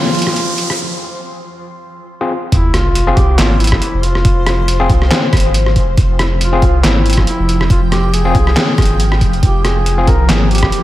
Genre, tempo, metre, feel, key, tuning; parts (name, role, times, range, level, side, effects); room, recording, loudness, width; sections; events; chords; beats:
deep dubstep; 139 BPM; 4/4; swing 55% on 16ths, half-time; F harmonic minor; A4 = 439 Hz
mellow duduk; melody; 0.0-10.8 s; E4 to Bb4; -21 LUFS; equal; dub echo
granular cloud pad; sustained chords; 0.0-10.8 s; F3 to G5; -22 LUFS; left 1 dB; built-in reverb
soft dub sub bass; bass; 0.0-10.7 s; F1 to C2; -14 LUFS; equal; high-pass filter
riser and sub drop; sound effects; 0.0-4.2 s; -21 LUFS; right 1 dB
flickering grainy texture; texture; 0.8 s; F3; -36 LUFS; equal
trip hop sampler-style drum kit; drums; 0.1-10.8 s; handclaps, hi-hat, rim click, snare drum; -17 LUFS; equal; overdrive
overdriven tine electric piano; stabs; 2.2-10.1 s; C4 to Ab4; -21 LUFS; left 3 dB; medium tremolo, dub echo
electronic kick drum; drums; 2.5-10.7 s; -13 LUFS; equal
moderate plate reverb, RT60 2.1 s; dreamy mix soaked in reverb; -10 LUFS; side -15 dB against mid
0.0-2.5 A section; 2.5-10.8 B section
build-up 0.0-2.5; riser 0.0-0.8; break 0.8-2.5; drop 2.5-10.8; impact 2.5-4.2
0.0 Fm
0.36 | 0.80 1.23 1.66 2.09 | 2.52 2.95 3.38 3.82 | 4.25 4.68 5.11 5.54 | 5.97 6.41 6.84 7.27 | 7.70 8.13 8.56 9.00 | 9.43 9.86 10.29 10.72